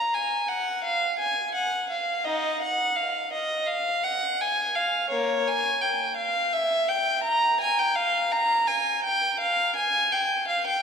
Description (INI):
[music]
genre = classical, baroque-style suite movement for unaccompanied violin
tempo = 84 BPM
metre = 4/4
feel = rubato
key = unclear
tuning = A4 = 440 Hz
[part]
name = warm violin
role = solo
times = 0.0-10.8 s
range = Bb3 to Bb5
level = -23 LUFS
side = equal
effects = none
[sound]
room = wet church reverb, RT60 3.5 s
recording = recorded in a church or concert hall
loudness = -23 LUFS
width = side -6 dB against mid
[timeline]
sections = 0.0-10.8 A section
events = none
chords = none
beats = 0.12 0.83 1.53 | 2.25 2.98 3.70 4.41 | 5.12 5.83 6.54 7.25 | 7.96 8.68 9.39 10.11